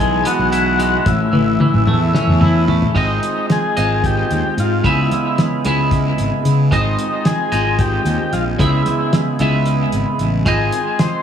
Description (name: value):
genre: psychedelic rock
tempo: 223 BPM (eighths)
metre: 7/8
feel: straight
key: unclear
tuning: A4 = 440 Hz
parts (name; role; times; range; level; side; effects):
- combo organ; melody; 0.0-11.2 s; D#4 to B#4; -21 LUFS; left 4 dB; dub echo
- twangy electric guitar; riff; 0.0-11.2 s; A2 to E5; -19 LUFS; right 2 dB; flanger, dub echo
- fuzz fingered electric bass; bass; 0.0-10.7 s; G#1 to C#3; -18 LUFS; left 1 dB; overdrive
- cloth-damped thuddy drum kit; drums; 0.3-11.1 s; crash cymbal, hi-hat, kick drum, snare drum, toms; -19 LUFS; equal; none
room: light reverb, small room ambience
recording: echo-heavy mix, studio ambience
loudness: -14 LUFS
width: side -8 dB against mid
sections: 0.0-3.0 A section; 3.0-11.2 B section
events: drum fill 1.3-3.0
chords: 0.0 E; 1.1 A; 3.0 G#6; 4.8 C#m7; 6.7 G#6; 8.6 C#m7; 10.5 G#6